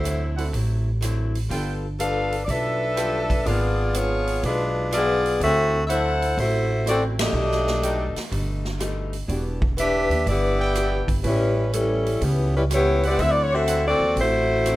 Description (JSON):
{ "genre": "jazz, big band swing", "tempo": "123 BPM", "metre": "4/4", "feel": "swing 68% on 8ths", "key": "D mixolydian", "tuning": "A4 = 440 Hz", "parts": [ { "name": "clear saxophone section", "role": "melody", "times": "0.0-14.8 s", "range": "E3 to F#5", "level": "-21 LUFS", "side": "left 1 dB", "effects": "none" }, { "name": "picked old ladder-braced acoustic guitar", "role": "accompaniment", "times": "0.0-14.8 s", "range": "G#2 to A4", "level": "-34 LUFS", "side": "left 3 dB", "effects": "none" }, { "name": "upright bass", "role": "bass", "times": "0.0-14.8 s", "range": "E1 to Eb2", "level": "-25 LUFS", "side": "equal", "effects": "none" }, { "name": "swinging big-band drum kit", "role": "drums", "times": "0.1-14.8 s", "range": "hi-hat, kick drum, ride cymbal, rim click, snare drum", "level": "-30 LUFS", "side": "right 1 dB", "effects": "none" }, { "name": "warm upright piano", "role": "accompaniment", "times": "0.4-3.8, 6.8-13.5 s", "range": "F#3 to Bb4", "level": "-34 LUFS", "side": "right 3 dB", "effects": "none" }, { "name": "bright trumpet section", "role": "stabs", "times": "0.4-13.9 s", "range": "D4 to G5", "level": "-33 LUFS", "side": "right 2 dB", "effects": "none" } ], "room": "light reverb, small room ambience", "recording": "rough home demo mix", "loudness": "-20 LUFS", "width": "side -16 dB against mid", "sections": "0.0-14.8 A section", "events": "band accent 7.1", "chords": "0.0 D9; 1.5 G9; 3.5 G#dim7; 5.4 D9; 7.3 B7alt; 9.3 Em7; 11.2 A9; 13.2 D9" }